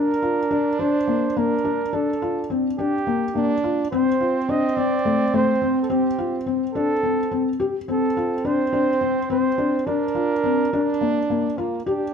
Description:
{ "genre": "contemporary instrumental, chamber music in an uneven meter", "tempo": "212 BPM (eighths)", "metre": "7/8", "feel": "straight", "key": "unclear", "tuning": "A4 = 439 Hz", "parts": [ { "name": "mellow flugelhorn", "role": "melody", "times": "0.0-12.1 s", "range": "G4 to Eb5", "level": "-25 LUFS", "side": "right 4 dB", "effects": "none" }, { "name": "clear French horn", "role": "second line", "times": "0.0-12.1 s", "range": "Bb3 to D4", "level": "-25 LUFS", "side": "right 5 dB", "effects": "none" }, { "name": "felt-muted upright piano", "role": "arpeggios", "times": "0.0-12.0 s", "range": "A3 to G4", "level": "-22 LUFS", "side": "left 5 dB", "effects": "none" } ], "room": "light reverb", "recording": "close, detailed microphones", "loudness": "-19 LUFS", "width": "side -7 dB against mid", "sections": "0.0-11.9 A section", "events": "none", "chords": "0.0 Gm7; 3.9 F (rootless); 9.9 Bbadd9" }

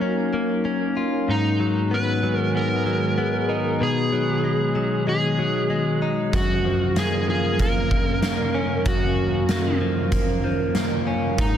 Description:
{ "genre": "dream pop", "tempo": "95 BPM", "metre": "4/4", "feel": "straight", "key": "F# major", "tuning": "A4 = 439 Hz", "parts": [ { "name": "warbly tape-like pad", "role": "sustained chords", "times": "0.0-11.6 s", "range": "D#3 to E#5", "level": "-26 LUFS", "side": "right 1 dB", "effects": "chorus, built-in reverb, phaser" }, { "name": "direct-recorded clean electric guitar", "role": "arpeggios", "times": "0.0-11.6 s", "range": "F#2 to E#4", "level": "-24 LUFS", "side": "left 2 dB", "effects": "wide subtle chorus, tape echo" }, { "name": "overdriven slide guitar", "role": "melody", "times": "1.3-11.6 s", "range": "D#4 to B4", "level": "-26 LUFS", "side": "right 1 dB", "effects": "tape echo" }, { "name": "oversized low-tuned drum kit", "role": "drums", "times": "6.3-11.5 s", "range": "hi-hat, kick drum, snare drum", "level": "-24 LUFS", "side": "equal", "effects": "none" } ], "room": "moderate scoring stage reverb, RT60 1.8 s, studio ambience", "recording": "dense, heavily limited modern master", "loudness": "-20 LUFS", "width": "side -9 dB against mid", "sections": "0.0-11.6 A section", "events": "none", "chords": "0.0 F#maj7; 1.3 G#m7; 3.8 B6; 6.3 F#maj7" }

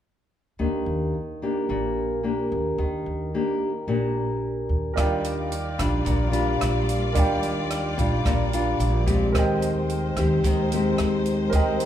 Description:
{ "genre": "bossa nova", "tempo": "110 BPM", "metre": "4/4", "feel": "straight", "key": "Eb major", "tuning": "A4 = 440 Hz", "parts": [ { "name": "nylon-string guitar", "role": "accompaniment", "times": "0.6-11.9 s", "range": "Bb2 to G4", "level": "-25 LUFS", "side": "left 1 dB", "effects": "none" }, { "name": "upright bass", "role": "bass", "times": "0.6-11.9 s", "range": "Bb1 to Eb2", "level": "-26 LUFS", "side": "equal", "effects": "none" }, { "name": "warm concert grand piano", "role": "accompaniment", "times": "4.9-11.9 s", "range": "Bb4 to G5", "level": "-30 LUFS", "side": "right 4 dB", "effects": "none" }, { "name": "warm symphonic string section", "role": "sustained chords", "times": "5.0-11.9 s", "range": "G3 to D5", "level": "-31 LUFS", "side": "left 1 dB", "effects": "none" }, { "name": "compact cocktail drum kit", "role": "drums", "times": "5.0-11.9 s", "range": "hi-hat, kick drum, rim click", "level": "-28 LUFS", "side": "equal", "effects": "none" } ], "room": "moderate recital hall reverb, RT60 1.7 s", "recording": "recorded in a church or concert hall", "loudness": "-22 LUFS", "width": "side -10 dB against mid", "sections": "0.6-5.0 A section; 5.0-11.9 B section", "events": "none", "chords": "0.6 Ebmaj7; 5.0 Ebmaj9; 9.3 Abmaj7/Eb" }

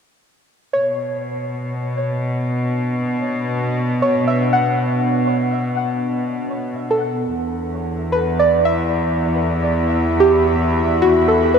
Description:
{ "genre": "ambient", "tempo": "73 BPM", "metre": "4/4", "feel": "straight", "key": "B minor", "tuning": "A4 = 440 Hz", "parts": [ { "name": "warm analog pad", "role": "sustained chords", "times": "0.7-11.6 s", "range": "B3 to B5", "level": "-25 LUFS", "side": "right 1 dB", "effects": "chorus" }, { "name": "soft round pluck", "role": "arpeggios", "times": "0.7-11.6 s", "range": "F#4 to F#5", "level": "-19 LUFS", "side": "equal", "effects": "chorus, diffuse ambient delay" }, { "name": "clear studio cello section", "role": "bass", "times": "0.7-11.6 s", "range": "E2 to B2", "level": "-20 LUFS", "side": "equal", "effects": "none" } ], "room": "wet cathedral reverb, RT60 6.2 s", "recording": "in a vast, echoing space", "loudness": "-16 LUFS", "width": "side -6 dB against mid", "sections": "0.7-11.6 A section", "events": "fade-in on analog synth pad 0.7-11.6", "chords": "0.7 Bmadd9; 7.3 Emadd9" }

